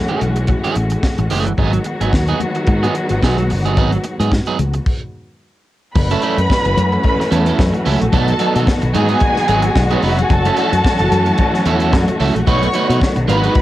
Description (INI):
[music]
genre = disco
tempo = 110 BPM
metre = 4/4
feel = swing 56% on 16ths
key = F# dorian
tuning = A4 = 440 Hz
[part]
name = dark symphonic string section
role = sustained chords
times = 0.0-13.6 s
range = D#3 to F#4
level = -20 LUFS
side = left 1 dB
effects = cassette tape
[part]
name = electric guitar at the edge of break-up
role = accompaniment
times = 0.1-13.6 s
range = E3 to B4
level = -20 LUFS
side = right 6 dB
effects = cassette tape
[part]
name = tight funk drum kit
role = drums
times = 0.1-13.6 s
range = crash cymbal, hi-hat, kick drum, snare drum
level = -19 LUFS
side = equal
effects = cassette tape
[part]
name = fingered electric bass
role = bass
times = 0.2-13.5 s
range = E#1 to B2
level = -17 LUFS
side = equal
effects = none
[part]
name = congas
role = percussion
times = 0.2-13.6 s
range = none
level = -28 LUFS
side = left 8 dB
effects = none
[part]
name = dark symphonic violin section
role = second line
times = 6.0-13.6 s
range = B3 to C#6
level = -20 LUFS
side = equal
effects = cassette tape
[part]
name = cowbell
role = percussion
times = 6.0-13.6 s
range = none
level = -31 LUFS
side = left 8 dB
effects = none
[sound]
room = light reverb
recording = home recording on cassette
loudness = -13 LUFS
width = side -14 dB against mid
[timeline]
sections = 0.0-6.0 A section; 6.0-13.6 B section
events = stop 4.9-6.0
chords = 0.0 F#m9; 1.6 G#m7; 6.0 F#m7; 8.1 B7; 8.9 G#m7; 10.3 F#m7; 12.5 B7